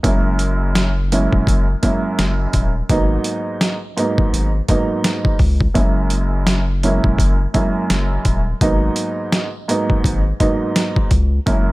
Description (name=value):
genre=hip hop, boom-bap hip-hop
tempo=84 BPM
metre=4/4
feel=swing 60% on 16ths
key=G# minor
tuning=A4 = 439 Hz
part: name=dark upright piano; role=accompaniment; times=0.0-11.7 s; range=F#2 to E4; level=-20 LUFS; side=right 2 dB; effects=cassette tape, high-pass filter, low-pass filter
part: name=saturated sub bass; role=bass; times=0.0-11.7 s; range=D#1 to C#2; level=-18 LUFS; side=equal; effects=none
part: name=boom bap sampler-style drum kit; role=drums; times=0.0-11.7 s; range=hi-hat, kick drum, snare drum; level=-18 LUFS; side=equal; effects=overdrive
room=little or no reverb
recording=none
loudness=-15 LUFS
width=side -20 dB against mid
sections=0.0-11.7 A section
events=none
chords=0.0 F#7; 2.9 G#m9; 5.8 F#7; 8.6 G#m9